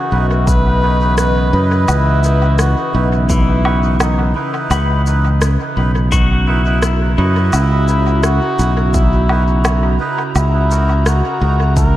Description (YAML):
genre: ambient dub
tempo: 85 BPM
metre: 4/4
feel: straight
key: C# dorian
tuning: A4 = 440 Hz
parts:
  - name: trumpet with cup mute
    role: melody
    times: 0.0-12.0 s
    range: D#4 to B4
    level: -20 LUFS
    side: left 1 dB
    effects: analog delay
  - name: airy breathy pad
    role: sustained chords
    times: 0.0-12.0 s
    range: C#3 to A#5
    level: -23 LUFS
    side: right 2 dB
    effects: chorus
  - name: melodica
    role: stabs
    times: 0.1-11.6 s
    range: D#4 to D#5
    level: -24 LUFS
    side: right 3 dB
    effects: vintage 12-bit sampler grit, dub echo
  - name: modern bright fingered electric bass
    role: bass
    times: 0.1-12.0 s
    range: B1 to F#2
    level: -14 LUFS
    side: equal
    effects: none
  - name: electronic kick drum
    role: drums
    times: 0.5-11.9 s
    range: none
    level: -16 LUFS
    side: equal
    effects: overdrive
  - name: electronic shaker, rim click and woodblock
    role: drums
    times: 0.5-11.9 s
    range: none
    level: -24 LUFS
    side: equal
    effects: overdrive, dub echo
  - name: pedal steel guitar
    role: arpeggios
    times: 3.3-8.6 s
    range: E3 to C#6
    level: -25 LUFS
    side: left 4 dB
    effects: analog delay
room: moderate lush hall reverb, RT60 2.8 s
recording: dreamy mix soaked in reverb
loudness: -12 LUFS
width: side -14 dB against mid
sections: 0.0-12.0 A section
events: none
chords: 0.0 C#m9; 10.4 F#6/C#